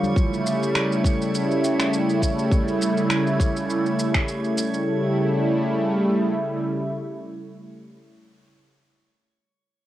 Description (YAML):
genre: organic downtempo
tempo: 102 BPM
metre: 4/4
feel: swing 55% on 16ths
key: unclear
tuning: A4 = 441 Hz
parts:
  - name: warm analog pad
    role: sustained chords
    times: 0.0-8.0 s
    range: C#3 to F4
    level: -22 LUFS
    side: equal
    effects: chorus, sidechain pumping, cassette tape
  - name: electronic shaker and finger snaps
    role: drums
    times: 0.0-4.8 s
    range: none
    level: -28 LUFS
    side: right 1 dB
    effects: small room reverb, cassette tape
  - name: drifting glass-harmonics texture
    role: texture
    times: 0.0-4.9 s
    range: C#5 to C#6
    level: -33 LUFS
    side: right 4 dB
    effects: chorus, built-in reverb, cassette tape
  - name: electronic kick drum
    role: drums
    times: 0.2-4.2 s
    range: none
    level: -21 LUFS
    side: equal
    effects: small room reverb, cassette tape
room: moderate spring reverb, RT60 1.9 s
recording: home recording on cassette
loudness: -20 LUFS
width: side -13 dB against mid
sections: 0.0-4.9 A section; 4.9-7.2 B section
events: none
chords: 0.2 A7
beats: | 0.16 0.75 1.33 1.92 | 2.51 3.10 3.69 4.28 | 4.86 5.45 6.04 6.63